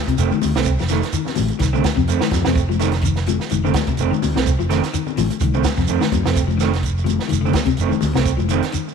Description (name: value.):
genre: afrobeat.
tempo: 126 BPM.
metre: 4/4.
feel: swing 55% on 16ths.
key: F mixolydian.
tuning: A4 = 440 Hz.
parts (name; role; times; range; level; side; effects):
semi-hollow electric guitar; arpeggios; 0.1-8.9 s; C3 to F3; -24 LUFS; left 10 dB; analog chorus.
compact cocktail drum kit; drums; 0.1-8.8 s; hi-hat, kick drum, snare drum; -24 LUFS; right 4 dB; none.
shekere; percussion; 0.1-8.9 s; none; -29 LUFS; right 5 dB; none.
electric guitar at the edge of break-up; stabs; 0.2-8.9 s; Eb3 to C4; -24 LUFS; right 13 dB; none.
fingered electric bass; bass; 0.2-8.6 s; F1 to F2; -21 LUFS; equal; none.
congas; percussion; 0.3-8.5 s; none; -25 LUFS; left 14 dB; none.
room: light reverb, small room ambience.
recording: 1960s-style stereo with parts hard left and right.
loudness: -16 LUFS.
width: side -6 dB against mid.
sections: 0.0-8.9 A section.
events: none.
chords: 0.0 F7.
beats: 0.19 | 0.66 1.14 1.61 2.08 | 2.56 3.03 3.51 3.98 | 4.46 4.93 5.41 5.88 | 6.36 6.83 7.30 7.78 | 8.25 8.73.